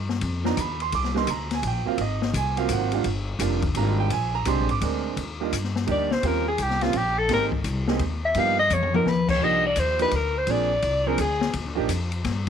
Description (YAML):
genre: jazz, small-group swing and bop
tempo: 170 BPM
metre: 3/4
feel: swing 65% on 8ths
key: Eb major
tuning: A4 = 440 Hz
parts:
  - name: upright bass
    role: bass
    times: 0.0-12.5 s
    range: F1 to G2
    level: -27 LUFS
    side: left 1 dB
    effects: none
  - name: open jazz drum kit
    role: drums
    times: 0.1-12.5 s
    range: crash cymbal, hi-hat, kick drum, ride cymbal, snare drum, toms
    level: -29 LUFS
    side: left 6 dB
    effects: none
  - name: warm concert grand piano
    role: accompaniment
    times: 0.4-11.9 s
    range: F3 to D6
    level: -27 LUFS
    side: right 13 dB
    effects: none
  - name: mellow soprano saxophone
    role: melody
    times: 5.9-11.6 s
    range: F4 to F5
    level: -23 LUFS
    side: left 2 dB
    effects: none
room: light reverb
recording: 1960s-style stereo with parts hard left and right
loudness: -22 LUFS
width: side -8 dB against mid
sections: 0.0-5.2 A section; 5.2-12.5 A section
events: soprano saxophone solo 5.2-12.5; drum fill 8.7-9.1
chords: 0.0 G7b13; 0.9 C7sus2; 2.0 Ab13; 3.1 Gm7; 4.1 Bb13; 5.2 Ebmaj7; 6.2 Eb13; 7.3 Abmaj9; 8.4 G7alt; 9.4 Cm11; 10.5 Bb7; 11.5 Ebmaj9